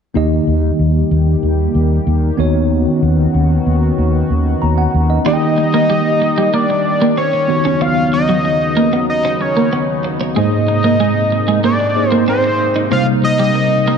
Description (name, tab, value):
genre	pop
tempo	94 BPM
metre	4/4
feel	straight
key	unclear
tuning	A4 = 440 Hz
part	tine electric piano	accompaniment	0.1-14.0 s	Ab2 to Bb5	-17 LUFS	equal	fast stereo tremolo
part	sweeping resonant pad	sustained chords	0.2-14.0 s	D#2 to G4	-21 LUFS	left 1 dB	chorus
part	fretless electric bass	bass	0.2-5.2 s	Eb2	-14 LUFS	equal	wide subtle chorus
part	fat analog lead	melody	5.3-14.0 s	C5 to F5	-16 LUFS	equal	ping-pong delay
part	twelve-string electric guitar	riff	5.3-14.0 s	F#3 to Eb4	-19 LUFS	right 4 dB	analog chorus
room	light reverb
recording	dark, warm production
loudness	-12 LUFS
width	side -6 dB against mid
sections	0.2-5.3 A section; 5.3-14.0 B section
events	none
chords	0.2 Eb; 2.4 Badd9/D#; 5.3 Eb; 7.5 Badd9/D#; 10.4 Abadd9; 12.9 Cm7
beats	| 0.15 0.79 1.43 2.07 | 2.71 3.34 3.98 4.62 | 5.26 5.90 6.54 7.17 | 7.81 8.45 9.09 9.73 | 10.37 11.00 11.64 12.28 | 12.92 13.56